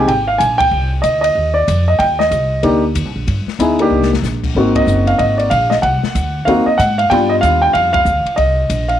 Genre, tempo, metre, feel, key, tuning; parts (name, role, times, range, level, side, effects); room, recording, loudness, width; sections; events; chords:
jazz piano trio; 188 BPM; 4/4; swing 62% on 8ths; C minor; A4 = 442 Hz
warm baby grand piano; melody; 0.0-9.0 s; G3 to Ab5; -13 LUFS; equal
upright bass; bass; 0.0-9.0 s; Gb1 to Ab2; -18 LUFS; equal
open jazz drum kit; drums; 0.1-8.9 s; crash cymbal, hi-hat, kick drum, ride cymbal, snare drum; -25 LUFS; left 5 dB
light reverb, small room ambience; 1960s-style stereo; -12 LUFS; side -10 dB against mid
0.0-9.0 A section
band accent 0.6, 4.7, 7.9; drum fill 3.9-4.2
0.0 Fm9; 2.0 Cm9; 4.6 Ab7; 7.1 G7; 8.4 Cm7